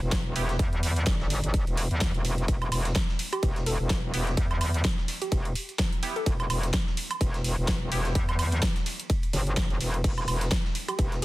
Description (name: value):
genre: bass house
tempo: 127 BPM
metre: 4/4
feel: swing 57% on 16ths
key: E minor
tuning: A4 = 440 Hz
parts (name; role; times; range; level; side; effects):
- metallic wobble bass; bass; 0.0-11.2 s; E1 to E2; -27 LUFS; equal; chorus, overdrive, sidechain pumping
- big-room dance drum kit; drums; 0.1-11.2 s; crash cymbal, hi-hat, snare drum, woodblock; -32 LUFS; right 1 dB; overdrive
- breakbeat sampler-style drum kit; drums; 0.1-11.2 s; ride cymbal, snare drum; -42 LUFS; right 2 dB; none
- electronic kick drum; drums; 0.1-11.1 s; none; -28 LUFS; equal; overdrive
- band-passed chord stab; stabs; 0.4-0.6, 4.1-8.1 s; B3 to G4; -36 LUFS; right 2 dB; chorus, sidechain pumping, tape echo
- hollow square pluck; melody; 3.3-6.6, 10.9-11.2 s; G4 to A4; -35 LUFS; equal; chorus, tape echo
room: little or no reverb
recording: dense, heavily limited modern master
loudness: -25 LUFS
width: side -18 dB against mid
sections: 0.0-11.2 A section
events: none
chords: 0.0 Em